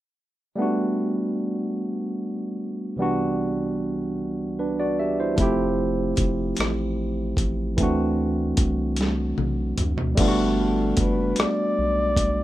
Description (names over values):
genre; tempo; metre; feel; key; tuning
slow six-eight R&B; 50 BPM (dotted quarters); 6/8; straight; G major; A4 = 440 Hz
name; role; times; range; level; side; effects
barky tine electric piano; accompaniment; 0.6-12.4 s; C2 to E5; -23 LUFS; right 1 dB; overdrive
round analog bass; bass; 5.4-12.4 s; F1 to D2; -28 LUFS; equal; none
dusty soul sampler-style drum kit; drums; 5.4-12.4 s; crash cymbal, hi-hat, kick drum, rim click, snare drum, toms; -24 LUFS; equal; overdrive
breathy flugelhorn; melody; 10.6-12.4 s; A4 to D5; -25 LUFS; left 1 dB; none
room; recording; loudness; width
digital ambience; rough home demo mix; -22 LUFS; side -14 dB against mid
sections
0.6-10.2 A section; 10.2-12.4 B section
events
drum fill 9.0-10.2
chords
0.6 Gmaj7; 3.0 Cmaj9#11; 5.4 Fmaj9; 7.8 D9; 10.2 Gmaj7